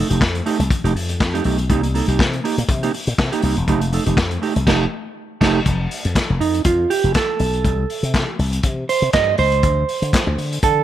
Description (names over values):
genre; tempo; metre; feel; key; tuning
disco; 121 BPM; 4/4; swing 56% on 16ths; unclear; A4 = 440 Hz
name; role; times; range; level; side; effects
mellow electric guitar; accompaniment; 0.0-10.8 s; A3 to Eb5; -20 LUFS; right 6 dB; none
slap bass with an envelope filter; bass; 0.1-10.8 s; E1 to D3; -20 LUFS; left 1 dB; none
vintage drum kit; drums; 0.1-10.8 s; crash cymbal, handclaps, hi-hat, kick drum, snare drum; -21 LUFS; left 1 dB; none
room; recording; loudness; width
light reverb, small room ambience; none; -16 LUFS; side -12 dB against mid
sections
0.0-5.7 A section; 5.7-10.8 B section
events
band accent 4.7-5.7; clean electric guitar solo 5.7-10.8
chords
0.0 F9; 1.7 Cm7; 3.7 F9; 5.7 F; 7.6 C5; 9.6 D5